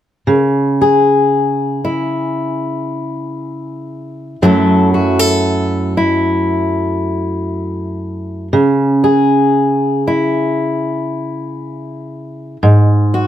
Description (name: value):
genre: folk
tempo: 58 BPM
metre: 4/4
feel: straight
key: C# minor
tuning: A4 = 439 Hz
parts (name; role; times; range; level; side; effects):
- fingerpicked steel-string acoustic guitar; accompaniment; 0.3-13.3 s; F#2 to A4; -13 LUFS; equal; none
room: light reverb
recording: close, detailed microphones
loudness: -12 LUFS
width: side -11 dB against mid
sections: 0.3-13.3 A section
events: none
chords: 0.3 C#m; 4.4 F#m7; 8.5 C#m; 12.6 N.C.